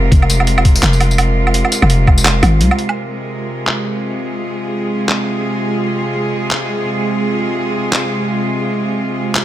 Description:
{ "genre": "half-time drum and bass", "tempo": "169 BPM", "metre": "4/4", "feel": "swing 59% on 16ths, half-time", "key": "F minor", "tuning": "A4 = 440 Hz", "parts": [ { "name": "bright studio cello section", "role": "sustained chords", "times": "0.0-9.4 s", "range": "C3 to Bb4", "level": "-18 LUFS", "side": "right 1 dB", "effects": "vintage 12-bit sampler grit, sidechain pumping" }, { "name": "growling 808-style bass", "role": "bass", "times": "0.0-2.7 s", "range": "F1 to C2", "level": "-13 LUFS", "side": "equal", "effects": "none" }, { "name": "boom bap sampler-style drum kit", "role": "drums", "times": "0.1-9.4 s", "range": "handclaps, hi-hat, tambourine, woodblock", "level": "-16 LUFS", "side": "right 1 dB", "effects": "low-pass filter on hats, small room ambience, low-pass filter on perc, low-pass filter on snare" }, { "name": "electronic kick drum", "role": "drums", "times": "0.1-2.2 s", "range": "none", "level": "-10 LUFS", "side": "equal", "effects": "small room ambience" } ], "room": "light reverb", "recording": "none", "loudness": "-13 LUFS", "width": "side -12 dB against mid", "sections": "0.0-3.0 A section; 3.0-9.4 B section", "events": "drop 0.0-3.0; break 2.6-3.0", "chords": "0.0 Fm" }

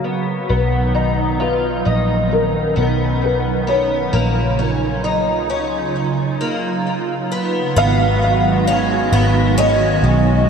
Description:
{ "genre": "dream pop", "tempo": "66 BPM", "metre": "4/4", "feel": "straight", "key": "unclear", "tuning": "A4 = 440 Hz", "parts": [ { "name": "hollow soft pad", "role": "sustained chords", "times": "0.0-10.5 s", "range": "C#3 to E#5", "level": "-21 LUFS", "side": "right 3 dB", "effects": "ensemble chorus, low-pass filter" }, { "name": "picked twelve-string acoustic guitar", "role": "arpeggios", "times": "0.0-10.5 s", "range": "A#3 to E#4", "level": "-21 LUFS", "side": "left 2 dB", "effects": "ensemble chorus, low-pass filter, ping-pong delay" }, { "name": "felt-muted upright piano", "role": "melody", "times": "0.5-10.5 s", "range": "A#4 to E#5", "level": "-21 LUFS", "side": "left 1 dB", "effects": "ensemble chorus, low-pass filter, ping-pong delay" }, { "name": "vintage muted picked electric bass", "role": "bass", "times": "0.5-10.5 s", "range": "G#1 to C#2", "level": "-19 LUFS", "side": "equal", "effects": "none" }, { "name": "electric guitar through a small old amp", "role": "accompaniment", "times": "7.8-10.5 s", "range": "G#2 to G#4", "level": "-23 LUFS", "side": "right 6 dB", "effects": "harmonic tremolo, analog chorus" } ], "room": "wet huge ambient reverb, RT60 8.4 s", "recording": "dreamy mix soaked in reverb", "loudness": "-15 LUFS", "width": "side -6 dB against mid", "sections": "0.0-7.8 A section; 7.8-10.5 B section", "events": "none", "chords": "0.0 F#maj7/A#; 7.8 G#m7" }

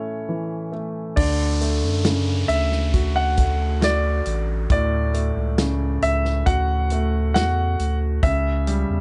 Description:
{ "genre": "pop ballad", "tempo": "68 BPM", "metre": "4/4", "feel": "straight", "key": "unclear", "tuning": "A4 = 441 Hz", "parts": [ { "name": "clear baby grand piano", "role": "melody", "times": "0.0-9.0 s", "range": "C#5 to F#5", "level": "-28 LUFS", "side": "equal", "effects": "none" }, { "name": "clear concert grand piano", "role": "accompaniment", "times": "0.0-9.0 s", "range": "A2 to F#4", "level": "-29 LUFS", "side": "equal", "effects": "none" }, { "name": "saturated sub bass", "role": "bass", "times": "1.2-9.0 s", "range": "A1 to F#2", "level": "-24 LUFS", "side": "equal", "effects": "none" }, { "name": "natural country drum kit", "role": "drums", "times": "1.2-8.9 s", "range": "crash cymbal, hi-hat, kick drum, snare drum", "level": "-24 LUFS", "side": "equal", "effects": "none" }, { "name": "downlifter", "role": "sound effects", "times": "1.2-8.2 s", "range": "none", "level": "-38 LUFS", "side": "equal", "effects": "none" } ], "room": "studio reverb", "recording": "dark, warm production, nothing above 10.9 kHz", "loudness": "-21 LUFS", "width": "mono", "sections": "0.0-1.2 A section; 1.2-9.0 B section", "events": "none", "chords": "0.0 A; 1.2 Dmaj7; 8.2 A7/C# (rootless)" }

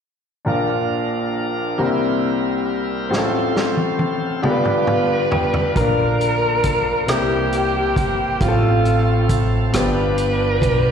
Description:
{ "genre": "slow gospel", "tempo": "45 BPM (dotted quarters)", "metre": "6/8", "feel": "straight", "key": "Bb major", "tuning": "A4 = 440 Hz", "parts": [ { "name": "clear baby grand piano", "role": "accompaniment", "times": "0.4-10.9 s", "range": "G1 to G5", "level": "-21 LUFS", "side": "left 2 dB", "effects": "slapback echo" }, { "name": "bright tonewheel organ", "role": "sustained chords", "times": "0.5-10.9 s", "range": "D3 to C5", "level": "-25 LUFS", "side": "right 4 dB", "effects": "fast rotary speaker, overdrive" }, { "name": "warm soul drum kit", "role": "drums", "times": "3.1-10.8 s", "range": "hi-hat, kick drum, rim click, snare drum, toms", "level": "-23 LUFS", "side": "right 1 dB", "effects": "slapback echo" }, { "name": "warm alto saxophone", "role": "melody", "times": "4.4-10.9 s", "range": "F4 to B4", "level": "-21 LUFS", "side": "equal", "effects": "slapback echo" }, { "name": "upright bass", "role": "bass", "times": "5.8-10.9 s", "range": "G1 to C2", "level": "-21 LUFS", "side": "right 1 dB", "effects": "none" } ], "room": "light reverb", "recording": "live gig heard through the venue's PA, recital hall reverb", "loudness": "-16 LUFS", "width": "side -7 dB against mid", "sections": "0.5-5.8 A section; 5.8-10.9 B section", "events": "drum fill 3.1-5.8; grand piano fill 4.4-5.8", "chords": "0.5 Bb; 1.8 C7; 3.1 F/A; 4.4 G7; 5.8 Bb; 7.1 C7; 8.4 F/A; 9.7 G7" }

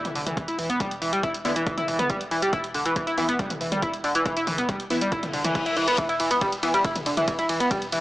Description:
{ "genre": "driving peak-time techno", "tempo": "139 BPM", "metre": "4/4", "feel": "straight", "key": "E minor", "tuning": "A4 = 440 Hz", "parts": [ { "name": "saturated sub bass", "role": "bass", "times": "0.0-8.0 s", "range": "E1", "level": "-47 LUFS", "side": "equal", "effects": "tube saturation, sidechain pumping, low-pass filter" }, { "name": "punchy analog drum machine", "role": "drums", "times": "0.0-8.0 s", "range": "hi-hat, ride cymbal, toms", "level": "-32 LUFS", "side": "equal", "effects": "sidechain pumping on hats, sidechain pumping on toms, sidechain pumping on cymbals" }, { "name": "overdriven synth lead", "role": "riff", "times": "0.2-8.0 s", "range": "D3 to E4", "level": "-24 LUFS", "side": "equal", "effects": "distortion, analog chorus, sidechain pumping, digital delay" }, { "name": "electronic kick drum", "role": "drums", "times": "0.4-7.8 s", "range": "none", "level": "-31 LUFS", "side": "equal", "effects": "none" }, { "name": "rave stab", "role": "stabs", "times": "1.4-6.7 s", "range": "E3 to E4", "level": "-32 LUFS", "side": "left 1 dB", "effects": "chorus, built-in reverb, sidechain pumping, digital delay" }, { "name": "reverse cymbal", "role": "sound effects", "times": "5.3-6.0 s", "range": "none", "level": "-32 LUFS", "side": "left 3 dB", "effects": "none" } ], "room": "light reverb", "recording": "small speaker sound", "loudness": "-22 LUFS", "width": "side -16 dB against mid", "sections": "0.0-8.0 A section", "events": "reverse cymbal 5.3-6.0", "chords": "0.0 E5" }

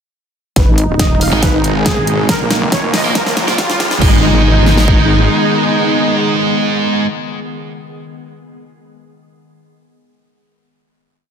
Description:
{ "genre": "heavy wobble dubstep", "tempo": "139 BPM", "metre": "4/4", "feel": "half-time", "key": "G# dorian", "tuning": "A4 = 440 Hz", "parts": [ { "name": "soft supersaw", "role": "melody", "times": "0.6-7.1 s", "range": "A#3 to E#5", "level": "-18 LUFS", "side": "right 1 dB", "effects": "low-pass filter, ping-pong delay" }, { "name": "evolving wavetable pad", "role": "sustained chords", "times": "1.0-7.1 s", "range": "B2 to G#4", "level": "-20 LUFS", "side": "left 1 dB", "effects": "ensemble chorus, built-in reverb, sidechain pumping" }, { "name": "wobble bass", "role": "bass", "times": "0.6-5.3 s", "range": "D#1 to C#2", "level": "-14 LUFS", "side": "equal", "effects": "chorus, overdrive" }, { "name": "big-room dance drum kit", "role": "drums", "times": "0.6-5.0 s", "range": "kick drum, snare drum", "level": "-15 LUFS", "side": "equal", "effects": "none" }, { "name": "big-room dance drum kit", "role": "drums", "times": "0.6-4.1 s", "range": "crash cymbal, hi-hat, snare drum", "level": "-18 LUFS", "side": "equal", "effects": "none" }, { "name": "riser", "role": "sound effects", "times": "2.0-4.0 s", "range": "none", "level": "-23 LUFS", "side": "equal", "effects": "none" }, { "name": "high-gain distorted guitar", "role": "stabs", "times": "1.3-7.1 s", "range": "G#3 to A#4", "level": "-17 LUFS", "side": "right 3 dB", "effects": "distortion, vintage 12-bit sampler grit, ping-pong delay" }, { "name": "snarling distorted saw bass", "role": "bass", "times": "1.3-3.7 s", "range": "E#1 to A#1", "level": "-19 LUFS", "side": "equal", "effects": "distortion, overdrive" } ], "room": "light reverb", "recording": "dense, heavily limited modern master, high-pass filter", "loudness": "-10 LUFS", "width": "side -7 dB against mid", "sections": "0.6-4.0 build; 4.0-7.5 final chord", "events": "build-up 0.6-4.0; drum fill 0.6-4.0; filter sweep on supersaw synth 0.6-4.0; filter sweep 0.6-4.0; riser 2.0-4.0", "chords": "0.6 G#m; 2.3 A#m7; 4.0 G#m" }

